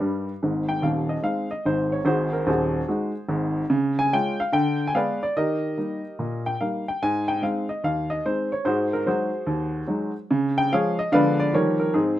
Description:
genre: jazz, stride piano.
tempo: 146 BPM.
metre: 4/4.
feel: swing 66% on 8ths.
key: Ab major.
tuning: A4 = 438 Hz.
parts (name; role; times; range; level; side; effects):
warm upright piano; solo; 0.0-12.2 s; Eb1 to Ab5; -22 LUFS; equal; none.
room: light reverb.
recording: close, detailed microphones.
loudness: -22 LUFS.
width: side -13 dB against mid.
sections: 0.4-12.2 A section.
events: upright piano fill 0.0-0.4.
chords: 0.4 Ab; 2.1 Ab7; 3.7 Db; 4.5 Ddim7; 5.4 Eb; 7.0 Ab; 8.6 Ab7; 10.3 Db; 11.1 Ddim7; 11.5 Eb9.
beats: 0.01 | 0.42 0.83 1.24 1.65 | 2.06 2.48 2.89 3.30 | 3.71 4.12 4.53 4.94 | 5.36 5.77 6.18 6.59 | 7.00 7.41 7.83 8.24 | 8.65 9.06 9.47 9.88 | 10.29 10.70 11.12 11.53 | 11.94.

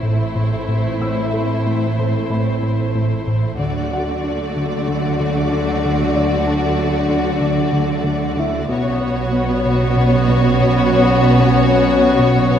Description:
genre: cinematic.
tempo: 94 BPM.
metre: 4/4.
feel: straight.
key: unclear.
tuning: A4 = 440 Hz.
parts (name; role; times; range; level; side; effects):
rich studio violin section; melody; 0.0-12.6 s; C5 to D5; -24 LUFS; left 2 dB; none.
rich studio violin section; second line; 0.0-12.6 s; E4 to F#4; -24 LUFS; left 3 dB; none.
rich studio viola section; accompaniment; 0.0-12.6 s; A3 to B3; -25 LUFS; left 1 dB; none.
dark French horn section; sustained chords; 0.0-12.6 s; E3 to D4; -23 LUFS; left 3 dB; none.
fat analog bass; riff; 0.0-12.6 s; A2 to D4; -21 LUFS; equal; none.
warm studio cello section; bass; 0.0-12.6 s; A2 to D3; -22 LUFS; right 3 dB; none.
warm studio double bass section; bass; 0.0-12.6 s; A1 to D2; -24 LUFS; right 4 dB; none.
felt-muted upright piano; texture; 0.0-12.6 s; E4 to E6; -27 LUFS; left 2 dB; none.
room: wet scoring stage reverb, RT60 1.5 s.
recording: heard from further back in the room.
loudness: -15 LUFS.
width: side -9 dB against mid.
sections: 0.0-12.6 A section.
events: none.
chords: 0.0 Am; 3.6 D; 8.7 Bsus2.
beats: 0.37 | 1.02 1.66 2.31 2.95 | 3.60 4.24 4.88 5.52 | 6.16 6.79 7.43 8.06 | 8.70 9.34 9.97 10.61 | 11.24 11.88 12.52.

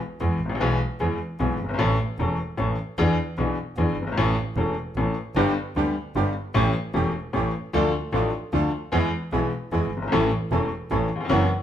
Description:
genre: tango.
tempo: 151 BPM.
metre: 3/4.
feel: rubato.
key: A major.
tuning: A4 = 444 Hz.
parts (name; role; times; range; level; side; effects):
bright upright piano; accompaniment; 0.2-11.5 s; E1 to A4; -24 LUFS; left 2 dB; none.
rich double bass; bass; 0.2-11.5 s; E1 to E2; -27 LUFS; right 2 dB; none.
bandoneon; stabs; 5.4-11.5 s; G#3 to G4; -31 LUFS; right 9 dB; none.
room: moderate large studio reverb, RT60 0.9 s.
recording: none.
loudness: -22 LUFS.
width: side -10 dB against mid.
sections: 0.0-11.6 A section.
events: none.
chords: 0.0 E; 1.8 A; 3.0 E7; 4.2 A; 5.4 G; 6.6 A7; 7.7 Dm; 8.9 E; 10.1 A.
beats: 0.20 | 0.60 1.00 1.39 | 1.79 2.19 2.58 | 2.98 3.37 3.77 | 4.17 4.57 4.96 | 5.36 5.76 6.15 | 6.55 6.95 7.34 | 7.74 8.13 8.53 | 8.92 9.32 9.71 | 10.11 10.51 10.90 | 11.30.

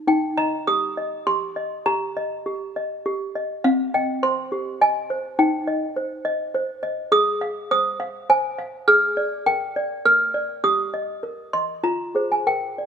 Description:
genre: classical, lullaby for toy piano.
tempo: 102 BPM.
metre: 3/4.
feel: rubato.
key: Eb major.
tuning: A4 = 440 Hz.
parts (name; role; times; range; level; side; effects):
toy piano; solo; 0.1-12.9 s; C4 to F6; -20 LUFS; equal; none.
room: light reverb.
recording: close, detailed microphones.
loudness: -20 LUFS.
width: side -7 dB against mid.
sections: 0.1-12.9 A section.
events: none.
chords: 0.1 Eb; 1.9 Eb/G; 3.6 Cm; 5.4 Cm/Eb; 7.1 Fm7/Ab; 8.9 Bb7/Ab; 10.6 Eb/G; 11.8 Fm.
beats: | 0.07 0.67 1.26 | 1.86 2.46 3.05 | 3.64 4.22 4.81 | 5.39 5.96 6.54 | 7.12 7.71 8.30 | 8.88 9.47 10.06 | 10.65 11.24 11.85 | 12.47.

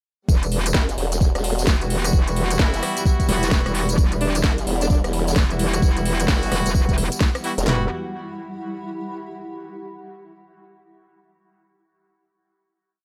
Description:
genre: bass house.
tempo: 130 BPM.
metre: 4/4.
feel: swing 61% on 16ths.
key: E minor.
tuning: A4 = 440 Hz.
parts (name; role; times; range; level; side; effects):
dark studio string section; sustained chords; 0.3-7.9 s; E3 to G4; -34 LUFS; equal; sidechain pumping.
metallic wobble bass; bass; 0.3-7.9 s; E1; -25 LUFS; equal; chorus, tube saturation, sidechain pumping.
garage drum kit; drums; 0.3-7.8 s; handclaps, kick drum, snare drum, toms; -21 LUFS; equal; small room reverb.
garage drum kit; drums; 0.3-7.7 s; hi-hat, rim click, snare drum, tambourine; -28 LUFS; equal; small room reverb.
granular cloud pad; texture; 2.1-9.5 s; G3 to B5; -36 LUFS; equal; built-in reverb, sidechain pumping.
brilliant horn section; stabs; 0.7-7.9 s; G3 to F#4; -31 LUFS; equal; sidechain pumping, dub echo.
formant-sweep wobble bass; bass; 0.7-7.7 s; E1 to F#1; -26 LUFS; equal; chorus, sidechain pumping.
clear alto saxophone; melody; 4.2-5.0 s; D4; -31 LUFS; equal; dub echo.
room: light reverb.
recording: none.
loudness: -20 LUFS.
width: mono.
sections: 0.3-7.7 drop; 7.7-9.5 final chord.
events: drop 0.3-7.7.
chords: 0.3 Emadd9.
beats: | 0.28 0.75 1.21 1.67 | 2.13 2.59 3.06 3.52 | 3.98 4.44 4.90 5.36 | 5.82 6.29 6.75 7.21 | 7.67 8.13 8.59 9.05.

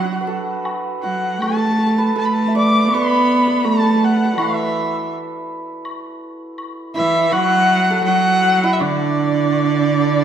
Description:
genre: chinese traditional, Chinese chamber ensemble.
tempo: 81 BPM.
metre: 4/4.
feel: rubato.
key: D gong mode.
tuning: A4 = 440 Hz.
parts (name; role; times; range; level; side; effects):
rich erhu; melody; 0.0-10.2 s; D5 to D6; -19 LUFS; left 2 dB; none.
clear cello; second line; 0.0-10.2 s; D3 to B3; -18 LUFS; right 3 dB; none.
hammered dulcimer; second line; 0.0-10.2 s; D4 to E5; -22 LUFS; right 3 dB; none.
woodblock; percussion; 0.7-9.7 s; none; -30 LUFS; left 4 dB; none.
room: moderate concert hall reverb, RT60 2.0 s.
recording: none.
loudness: -14 LUFS.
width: side -9 dB against mid.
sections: 0.0-10.2 A section.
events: none.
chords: none.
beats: 0.65 | 1.41 2.16 2.91 3.65 | 4.38 5.12 5.86 6.59 | 7.33 8.07 8.80 9.54.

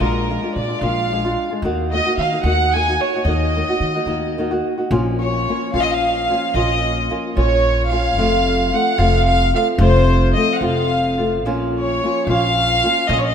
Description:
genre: mexican folk, mariachi.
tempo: 74 BPM (dotted quarters).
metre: 6/8.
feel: straight.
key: Eb minor, Bb minor from 4.9 s.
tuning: A4 = 440 Hz.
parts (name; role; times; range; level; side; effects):
rich chamber violin section; melody; 0.0-13.3 s; Bb4 to Ab5; -19 LUFS; equal; none.
flamenco guitar; accompaniment; 0.0-13.3 s; F2 to Gb4; -21 LUFS; left 1 dB; none.
upright bass; bass; 0.0-13.3 s; F1 to Eb3; -20 LUFS; equal; none.
room: moderate lush hall reverb, RT60 2.6 s.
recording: rough home demo mix.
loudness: -15 LUFS.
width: side -8 dB against mid.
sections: 0.0-4.9 A section; 4.9-13.3 B section.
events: none.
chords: 0.0 Bb7; 1.6 Ebm; 4.9 Bbm; 8.2 F; 11.5 Bbm.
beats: | 0.01 0.82 | 1.63 2.44 | 3.26 4.07 | 4.90 5.73 | 6.54 7.35 | 8.17 8.98 | 9.80 10.62 | 11.46 12.28 | 13.10.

